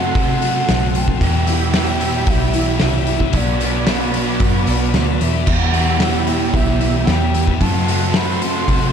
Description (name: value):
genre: rock, shoegaze and dream pop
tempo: 113 BPM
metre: 4/4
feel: straight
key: E minor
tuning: A4 = 438 Hz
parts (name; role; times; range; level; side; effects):
- pure breathy sine lead; melody; 0.0-8.9 s; D5 to C6; -25 LUFS; equal; chorus, slapback echo
- analog string pad; sustained chords; 0.0-8.9 s; F#4 to C6; -27 LUFS; right 1 dB; ensemble chorus
- picked twelve-string acoustic guitar; arpeggios; 0.0-8.9 s; F#3 to F#4; -28 LUFS; left 2 dB; ensemble chorus, slapback echo
- biting overdriven guitar; riff; 0.0-8.9 s; E2 to G4; -22 LUFS; right 14 dB; reverse reverb
- thick fuzz guitar; riff; 0.0-8.9 s; E2 to B3; -23 LUFS; left 10 dB; distortion, lush chorus
- vintage muted picked electric bass; bass; 0.0-8.9 s; B1 to C3; -20 LUFS; equal; none
- loose indie drum kit; drums; 0.2-8.8 s; crash cymbal, hi-hat, kick drum, snare drum; -20 LUFS; equal; none
room: small room ambience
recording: dark, warm production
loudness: -14 LUFS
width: side -7 dB against mid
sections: 0.0-8.9 A section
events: none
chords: 0.0 F#dim; 1.2 Em; 3.3 Bm; 5.5 Em; 7.6 F#dim